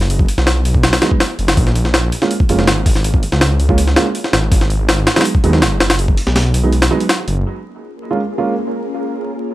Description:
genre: drum and bass, jungle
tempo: 163 BPM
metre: 4/4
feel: straight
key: Bb phrygian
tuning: A4 = 442 Hz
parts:
  - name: detuned saw bass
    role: bass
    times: 0.0-7.4 s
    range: F1 to Eb2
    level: -15 LUFS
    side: equal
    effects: tube saturation
  - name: jungle sampler-style drum kit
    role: drums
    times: 0.0-7.4 s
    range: hi-hat, kick drum, snare drum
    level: -14 LUFS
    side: equal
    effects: overdrive
  - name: dark baby grand piano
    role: stabs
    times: 1.0-8.5 s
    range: Gb3 to F4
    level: -20 LUFS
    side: right 3 dB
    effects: dub echo
  - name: soft string machine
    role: sustained chords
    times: 7.7-9.5 s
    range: Bb3 to Bb4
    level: -23 LUFS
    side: left 1 dB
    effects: phaser, ensemble chorus
room: little or no reverb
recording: vinyl crackle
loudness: -12 LUFS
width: side -16 dB against mid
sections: 0.0-7.5 A section; 7.5-9.5 B section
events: kick drops out 6.7-7.5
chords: 0.0 Abm7 (rootless); 1.6 Bbm7; 4.5 Abm7; 7.5 Bbm7

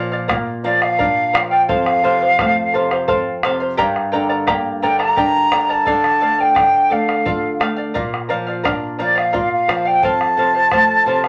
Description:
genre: andean folk, Andean ensemble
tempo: 86 BPM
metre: 3/4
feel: straight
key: unclear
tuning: A4 = 441 Hz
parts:
  - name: charango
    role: accompaniment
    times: 0.0-11.3 s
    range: G4 to Bb5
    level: -23 LUFS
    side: equal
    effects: none
  - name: flamenco guitar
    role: accompaniment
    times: 0.0-11.3 s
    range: F2 to F4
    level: -25 LUFS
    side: equal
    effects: none
  - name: bombo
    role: percussion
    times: 0.1-11.3 s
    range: none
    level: -26 LUFS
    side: equal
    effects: none
  - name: wooden flute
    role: melody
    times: 0.6-11.3 s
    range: D5 to Bb5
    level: -17 LUFS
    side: equal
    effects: none
room: moderate studio reverb, RT60 0.5 s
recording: none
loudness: -17 LUFS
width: mono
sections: 0.0-11.3 A section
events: none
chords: 0.0 Bb; 1.7 F; 3.8 Gm; 5.9 Dm; 8.0 Bb; 10.0 F

